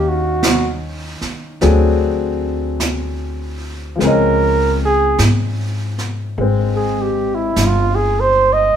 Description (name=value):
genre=jazz ballad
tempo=50 BPM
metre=4/4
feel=swing 66% on 8ths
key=unclear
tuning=A4 = 437 Hz
part: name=trumpet with bucket mute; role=melody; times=0.0-8.8 s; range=E4 to Eb5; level=-16 LUFS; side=right 3 dB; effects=none
part: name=warm baby grand piano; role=accompaniment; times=0.0-8.8 s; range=Eb3 to F5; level=-20 LUFS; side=left 4 dB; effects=none
part: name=upright bass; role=bass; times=0.0-8.7 s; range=G1 to Ab2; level=-19 LUFS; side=equal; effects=none
part: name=jazz brush drum kit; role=drums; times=0.4-8.8 s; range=brushed snare drum, hi-hat, snare drum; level=-23 LUFS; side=right 3 dB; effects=none
room=moderate large studio reverb, RT60 0.9 s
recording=band playing live in one room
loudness=-14 LUFS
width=side -9 dB against mid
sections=0.0-8.8 A section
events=muted trumpet solo 0.0-8.8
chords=0.0 Ebsus2; 1.6 D7#11; 4.0 Dbmaj9